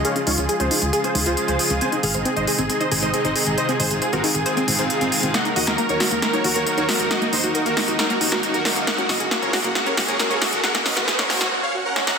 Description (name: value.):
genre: uplifting trance.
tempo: 136 BPM.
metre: 4/4.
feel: straight.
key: unclear.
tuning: A4 = 440 Hz.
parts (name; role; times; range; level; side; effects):
dense compressed supersaw; melody; 0.0-12.2 s; C4 to Bb5; -23 LUFS; right 1 dB; vintage 12-bit sampler grit, low-pass filter, digital delay.
lush unison pad; sustained chords; 0.0-11.3 s; C3 to Gb4; -25 LUFS; equal; chorus.
analog pluck; arpeggios; 0.0-11.5 s; Bb3 to Ab5; -27 LUFS; left 2 dB; chorus, cassette tape, digital delay.
solid FM bass; bass; 0.0-11.5 s; Gb1 to Eb2; -28 LUFS; equal; none.
big-room dance drum kit; drums; 0.0-12.2 s; hi-hat, snare drum; -22 LUFS; equal; none.
riser and swell; sound effects; 7.6-12.2 s; none; -30 LUFS; right 2 dB; none.
room: moderate concert hall reverb, RT60 2.1 s.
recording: dense, heavily limited modern master, high-pass filter.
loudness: -18 LUFS.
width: side -6 dB against mid.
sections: 0.0-12.2 A section.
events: build-up 0.0-12.2; filter sweep on supersaw synth 0.0-12.2; filter sweep on synth pluck 0.0-12.2; drum fill 5.3-11.5, 12.0; swell 11.5-12.2.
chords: 0.0 Db; 1.8 Ab; 5.3 Ebm; 8.9 Gbadd9.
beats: | 0.05 0.49 0.93 1.37 | 1.81 2.25 2.70 3.14 | 3.58 4.02 4.46 4.90 | 5.34 5.78 6.22 6.67 | 7.11 7.55 7.99 8.43 | 8.87 9.31 9.75 10.20 | 10.64 11.08 11.52 11.96.